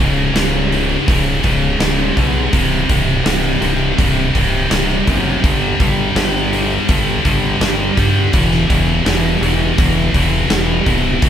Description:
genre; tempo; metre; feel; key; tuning
quiet-loud alternative rock; 83 BPM; 4/4; straight; unclear; A4 = 440 Hz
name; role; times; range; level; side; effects
scooped high-gain guitar; riff; 0.0-11.3 s; C2 to G3; -16 LUFS; equal; distortion
gritty driven synth bass; bass; 0.0-11.3 s; C1 to G2; -19 LUFS; equal; none
huge arena drum kit; drums; 0.0-11.3 s; hi-hat, kick drum, snare drum; -17 LUFS; equal; none
room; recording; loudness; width
moderate studio reverb, RT60 0.6 s; band playing live in one room; -13 LUFS; side -9 dB against mid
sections
0.0-11.3 A section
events
none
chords
0.0 Db5; 2.5 C5; 5.4 G5; 8.3 E5

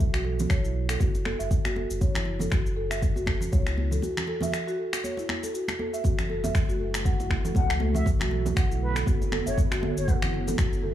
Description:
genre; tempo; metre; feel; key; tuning
afro house; 119 BPM; 4/4; swing 57% on 16ths; F# minor; A4 = 440 Hz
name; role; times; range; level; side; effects
warm sub bass; bass; 0.0-10.9 s; F#1 to C#2; -30 LUFS; equal; tube saturation, sidechain pumping
electronic kick drum; drums; 0.0-10.7 s; none; -25 LUFS; equal; none
electronic shaker and finger snaps; drums; 0.0-10.8 s; none; -34 LUFS; left 2 dB; none
congas; percussion; 0.0-10.7 s; none; -34 LUFS; right 2 dB; none
marimba with soft mallets; arpeggios; 0.1-10.9 s; E4 to F#5; -32 LUFS; equal; sidechain pumping, low-pass filter, dub echo
ethereal airy pad; sustained chords; 6.4-10.9 s; D3 to A4; -34 LUFS; right 1 dB; ensemble chorus, built-in reverb, vintage 12-bit sampler grit, sidechain pumping
concert flute; melody; 7.6-10.1 s; B4 to F#5; -35 LUFS; left 3 dB; dub echo
room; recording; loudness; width
studio ambience; small room ambience; -24 LUFS; side -12 dB against mid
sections
0.0-10.9 A section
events
break 4.0-6.0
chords
0.0 B5; 2.0 F#m; 4.0 Esus4; 6.0 F#m7; 8.1 Bm7; 10.1 F#m7

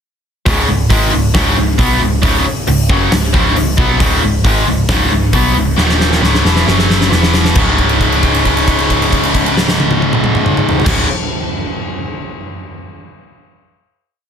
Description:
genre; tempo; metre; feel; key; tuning
hard rock; 135 BPM; 4/4; straight; C# minor; A4 = 442 Hz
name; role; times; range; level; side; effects
tight distorted guitar; riff; 0.5-11.1 s; C#2 to B3; -13 LUFS; equal; distortion
hollow-body short-scale picked electric bass; bass; 0.5-11.0 s; C#1 to B1; -17 LUFS; equal; none
huge arena drum kit; drums; 0.5-11.0 s; crash cymbal, hi-hat, kick drum, snare drum, toms; -15 LUFS; equal; none
room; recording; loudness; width
light reverb; dense, heavily limited modern master; -10 LUFS; side -8 dB against mid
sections
0.5-7.6 riff; 7.6-11.1 final chord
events
drum fill 5.8-7.6; held note 7.6-10.9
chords
0.5 C#5; 5.8 D#5; 6.2 C#m; 6.7 F#5; 7.1 E5; 7.6 C#5

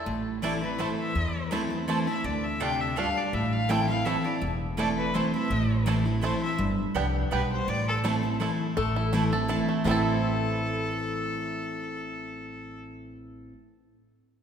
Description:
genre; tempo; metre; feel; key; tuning
bluegrass; 166 BPM; 3/4; swing 54% on 8ths; A minor; A4 = 440 Hz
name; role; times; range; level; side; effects
bluegrass banjo; melody; 0.0-13.5 s; A3 to A4; -35 LUFS; right 3 dB; none
picked steel-string acoustic guitar; accompaniment; 0.1-13.5 s; E2 to E4; -29 LUFS; equal; none
upright bass; bass; 0.1-13.5 s; E1 to E2; -33 LUFS; equal; none
clear fiddle; melody; 0.4-12.8 s; A4 to G5; -32 LUFS; left 2 dB; none
mandolin; stabs; 0.4-13.5 s; A3 to A5; -35 LUFS; right 3 dB; none
lap resonator guitar; second line; 8.8-13.5 s; A4 to C5; -35 LUFS; left 4 dB; none
room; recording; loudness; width
wet scoring stage reverb, RT60 2.1 s; recorded in a church or concert hall; -25 LUFS; side -8 dB against mid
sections
0.1-8.8 A section; 8.8-9.9 B section; 9.9-12.0 C section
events
none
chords
0.1 Am; 2.2 Dm; 3.3 Am; 6.6 G; 7.7 Am

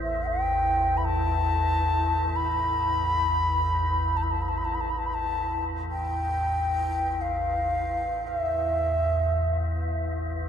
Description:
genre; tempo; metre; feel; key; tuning
world meditative, free-time meditation music; free time; none; none; A minor; A4 = 440 Hz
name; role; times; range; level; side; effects
bright reedy low xiao; melody; 0.0-10.0 s; E5 to B5; -26 LUFS; left 1 dB; none
icy glass pad; drone; 0.0-10.5 s; A1 to E2; -28 LUFS; equal; chorus, built-in reverb
folk marimba with soft mallets; texture; 0.0-7.8 s; C5 to E5; -52 LUFS; left 1 dB; none
room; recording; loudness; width
moderate huge ambient reverb, RT60 8.1 s; dark, warm production; -24 LUFS; side -8 dB against mid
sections
0.0-10.5 A section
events
none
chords
none

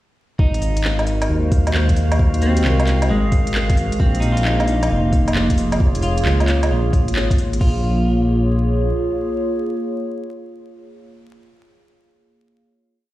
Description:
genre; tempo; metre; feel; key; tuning
future garage; 133 BPM; 4/4; swing 66% on 16ths; Bb minor; A4 = 440 Hz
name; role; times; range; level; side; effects
electric guitar at the edge of break-up; accompaniment; 0.4-11.0 s; Ab3 to F4; -26 LUFS; equal; wide subtle chorus, sidechain pumping, tape echo
warbly tape-like pad; sustained chords; 0.4-11.2 s; Ab3 to Db5; -24 LUFS; equal; chorus, built-in reverb, sidechain pumping
dark detuned saw bass; bass; 0.4-8.9 s; F1 to Eb2; -18 LUFS; equal; sidechain pumping
organic electronic drum kit; drums; 0.4-7.7 s; crash cymbal, kick drum; -17 LUFS; equal; overdrive, studio reverb
drifting glass-harmonics texture; texture; 0.9-7.6 s; F5; -31 LUFS; right 1 dB; chorus, built-in reverb
organic electronic drum kit; drums; 0.5-7.6 s; handclaps, hi-hat, woodblock; -25 LUFS; equal; overdrive, studio reverb
room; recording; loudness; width
light reverb; played on a big sound system in a bare room, stone room reverb, vinyl crackle; -16 LUFS; side -16 dB against mid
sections
0.4-7.6 chorus; 7.6-11.2 final chord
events
none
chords
0.4 Ab9; 4.0 Bbm7

